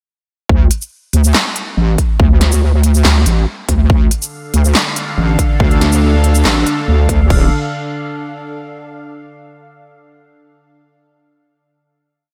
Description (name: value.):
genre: heavy wobble dubstep.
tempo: 141 BPM.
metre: 4/4.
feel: half-time.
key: D minor.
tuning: A4 = 440 Hz.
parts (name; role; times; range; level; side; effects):
wobble bass; bass; 0.5-7.5 s; D1 to D2; -13 LUFS; equal; chorus, overdrive.
electronic kick drum; drums; 0.5-7.4 s; none; -15 LUFS; equal; overdrive.
big-room dance drum kit; drums; 0.7-7.4 s; crash cymbal, handclaps, hi-hat, shaker, snare drum; -20 LUFS; equal; none.
evolving wavetable pad; sustained chords; 4.4-7.5 s; D3 to F5; -22 LUFS; equal; phaser, built-in reverb, sidechain pumping.
room: light reverb.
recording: none.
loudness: -13 LUFS.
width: mono.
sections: 0.5-7.3 drop; 7.3-9.0 final chord.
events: drop 0.5-7.3.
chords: 0.5 Dm.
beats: | 0.49 0.92 1.34 1.77 | 2.20 2.62 3.05 3.47 | 3.90 4.32 4.75 5.17 | 5.60 6.03 6.45 6.88 | 7.30.